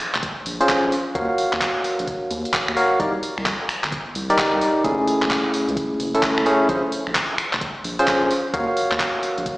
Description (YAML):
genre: UK garage, two-step garage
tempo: 130 BPM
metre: 4/4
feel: swing 64% on 16ths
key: unclear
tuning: A4 = 440 Hz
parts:
  - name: garage drum kit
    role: drums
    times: 0.0-9.6 s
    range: finger snaps, handclaps, hi-hat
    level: -24 LUFS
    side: equal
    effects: none
  - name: saturated sub bass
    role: bass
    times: 0.1-9.5 s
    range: F1 to Eb2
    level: -31 LUFS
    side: equal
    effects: sidechain pumping
  - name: electronic kick drum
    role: drums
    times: 0.2-9.6 s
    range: none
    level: -34 LUFS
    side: equal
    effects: none
  - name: barky tine electric piano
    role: stabs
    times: 0.6-9.6 s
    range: A3 to F5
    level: -20 LUFS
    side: equal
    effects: medium stereo tremolo, low-pass filter, digital delay
room: moderate digital room reverb, RT60 1.0 s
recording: played on a big sound system in a bare room, stone room reverb, small speaker sound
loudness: -18 LUFS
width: side -20 dB against mid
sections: 0.0-9.6 A section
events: filter sweep on tine electric piano 0.0-9.6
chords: 0.0 Bbm7; 0.9 Ebm7; 3.0 Cm7; 4.8 Gbm7; 6.7 Bbm7; 8.3 Ebm7